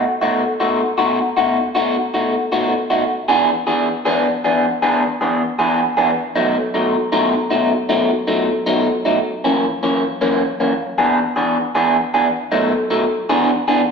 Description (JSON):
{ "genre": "blues", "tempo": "156 BPM", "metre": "4/4", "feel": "swing 67% on 8ths", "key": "B mixolydian", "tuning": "A4 = 439 Hz", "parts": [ { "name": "electric guitar through a small old amp", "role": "solo", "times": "0.0-13.8 s", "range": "F#2 to G#4", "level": "-15 LUFS", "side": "equal", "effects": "phaser, slapback echo" } ], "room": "light reverb", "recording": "live gig heard through the venue's PA, recital hall reverb", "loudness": "-15 LUFS", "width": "side -5 dB against mid", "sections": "0.0-13.9 A section", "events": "none", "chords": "0.0 B7; 3.0 E7; 6.1 B7; 9.2 F#7; 10.7 E7; 12.3 B7; 13.0 E7" }